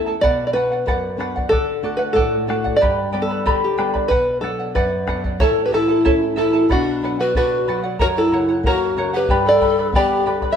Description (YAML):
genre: andean folk, Andean ensemble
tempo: 93 BPM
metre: 2/4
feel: straight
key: B minor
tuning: A4 = 440 Hz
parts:
  - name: charango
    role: accompaniment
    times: 0.0-10.6 s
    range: E4 to B5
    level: -22 LUFS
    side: right 2 dB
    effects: none
  - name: flamenco guitar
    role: accompaniment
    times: 0.0-10.6 s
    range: E2 to F#4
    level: -25 LUFS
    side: left 3 dB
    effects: none
  - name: open-back banjo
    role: melody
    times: 0.2-10.6 s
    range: F#4 to E5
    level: -20 LUFS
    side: right 1 dB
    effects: none
  - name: bombo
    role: percussion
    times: 0.2-10.6 s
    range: none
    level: -24 LUFS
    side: equal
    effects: none
  - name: breathy polished pan flute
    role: second line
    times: 5.4-10.6 s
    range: D4 to C#5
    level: -20 LUFS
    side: left 2 dB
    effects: none
room: wet stone room reverb, RT60 1.1 s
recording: band playing live in one room, lossy compression artefacts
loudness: -16 LUFS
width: side -8 dB against mid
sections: 0.0-5.4 A section; 5.4-10.6 B section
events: none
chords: 0.2 Bm; 1.5 D; 2.8 G; 4.1 Bm; 5.4 A; 6.7 Bm; 8.0 F#; 9.3 G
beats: | 0.22 0.87 | 1.51 2.16 | 2.81 3.46 | 4.10 4.75 | 5.40 6.05 | 6.70 7.34 | 7.99 8.64 | 9.29 9.94